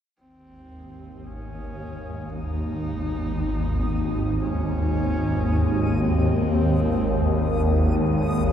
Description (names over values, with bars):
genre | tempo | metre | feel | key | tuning
dark ambient drone | free time | none | none | Ab major | A4 = 440 Hz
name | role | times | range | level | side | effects
rich horsehead fiddle | melody | 0.2-8.1 s | C4 to Eb4 | -34 LUFS | right 1 dB | shimmer reverb, ping-pong delay
deep dark ambient pad | sustained chords | 3.1-8.5 s | Ab3 to Eb5 | -32 LUFS | right 1 dB | chorus, built-in reverb, shimmer reverb
swarming drone | drone | 1.3-8.5 s | Ab1 to Eb2 | -22 LUFS | equal | built-in reverb
backwards swelling texture | texture | 1.4-8.5 s | Eb6 | -41 LUFS | left 3 dB | built-in reverb, shimmer reverb
room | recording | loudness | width
wet cathedral reverb, RT60 5.7 s | dark, warm production | -21 LUFS | side -9 dB against mid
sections
0.2-8.5 A section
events
fade-in on ambient pad 0.2-8.5; fade-in on synth texture 0.2-8.5; fade-in on horsehead fiddle 0.2-8.5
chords
0.2 Ab